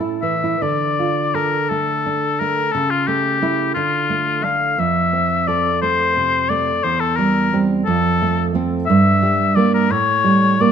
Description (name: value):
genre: romantic duo for oboe and classical guitar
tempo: 58 BPM (dotted quarters)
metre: 6/8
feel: rubato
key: D minor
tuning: A4 = 440 Hz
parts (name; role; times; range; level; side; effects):
- warm oboe; melody; 0.0-10.7 s; F4 to F5; -18 LUFS; left 5 dB; none
- nylon-string guitar; accompaniment; 0.0-10.7 s; E2 to A4; -18 LUFS; right 4 dB; none
room: moderate recital hall reverb, RT60 1.6 s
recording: nothing above 10.8 kHz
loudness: -15 LUFS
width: side -8 dB against mid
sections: 0.6-10.7 A section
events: none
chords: 0.0 A; 0.6 Dm; 2.7 A/C#; 3.8 Dm; 4.8 F; 6.8 C/E; 7.9 F; 8.9 Edim/G; 9.9 A7b9